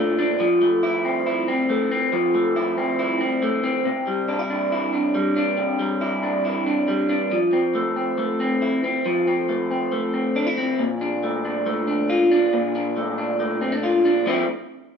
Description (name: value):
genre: indie pop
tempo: 138 BPM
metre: 4/4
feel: straight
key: F major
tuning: A4 = 440 Hz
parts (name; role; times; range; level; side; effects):
- electric guitar through a small old amp; solo; 0.0-14.4 s; Bb2 to F4; -19 LUFS; equal; phaser
room: moderate large studio reverb, RT60 1.1 s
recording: band playing live in one room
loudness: -19 LUFS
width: side -6 dB against mid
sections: 0.0-7.3 A section; 7.3-14.3 B section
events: none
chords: 0.4 Fmaj7; 3.9 Cadd9; 7.3 Fmaj7; 10.8 Bbmaj7; 14.3 Fmaj7